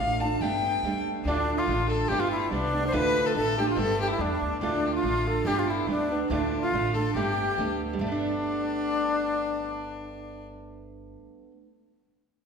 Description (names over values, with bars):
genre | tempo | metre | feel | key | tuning
celtic folk, Celtic polka | 142 BPM | 2/4 | swing 54% on 8ths | G mixolydian | A4 = 445 Hz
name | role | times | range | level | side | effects
wooden flute | melody | 0.0-10.5 s | D4 to A5 | -28 LUFS | left 1 dB | none
clear fiddle | second line | 0.0-10.5 s | D4 to A5 | -33 LUFS | left 5 dB | none
picked steel-string acoustic guitar | accompaniment | 0.0-11.6 s | D2 to F4 | -30 LUFS | right 4 dB | none
upright bass | bass | 0.0-11.2 s | G1 to E2 | -34 LUFS | equal | none
room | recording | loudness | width
wet scoring stage reverb, RT60 1.5 s | recorded in a church or concert hall | -24 LUFS | side -6 dB against mid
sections
0.0-1.3 A section; 1.3-8.0 A section; 8.0-9.7 B section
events
none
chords
0.4 Gadd9; 1.3 Dm; 2.1 Gadd9; 2.9 Dm; 3.8 Gadd9; 4.6 Dm; 5.5 Gadd9; 6.3 Dm; 7.2 Gadd9